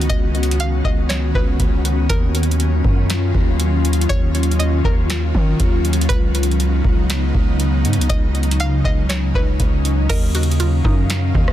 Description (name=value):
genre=hip hop, atmospheric cloud-rap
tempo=120 BPM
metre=4/4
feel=half-time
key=Eb minor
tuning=A4 = 438 Hz
part: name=ethereal airy pad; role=sustained chords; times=0.0-11.5 s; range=Db3 to F5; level=-22 LUFS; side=left 1 dB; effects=ensemble chorus, built-in reverb, sidechain pumping
part: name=long sustained 808-style bass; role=bass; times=0.0-11.5 s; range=Db2 to Eb3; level=-18 LUFS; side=equal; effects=none
part: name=booming analog drum machine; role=drums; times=0.0-11.5 s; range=crash cymbal, hi-hat, kick drum, rim click, snare drum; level=-20 LUFS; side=equal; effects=none
part: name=string-like resonator pluck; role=melody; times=0.1-11.5 s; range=Bb4 to F5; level=-29 LUFS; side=equal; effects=chorus, digital delay
part: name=mallet-like synth pluck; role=arpeggios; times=10.1-11.5 s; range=Eb3 to Eb5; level=-27 LUFS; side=right 3 dB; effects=chorus, digital delay
room=digital ambience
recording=dense, heavily limited modern master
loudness=-15 LUFS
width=side -12 dB against mid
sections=0.0-10.1 A section; 10.1-11.5 B section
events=none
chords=0.0 Db9sus4; 2.1 Ebm9; 6.1 Db9sus4; 10.1 Ebm9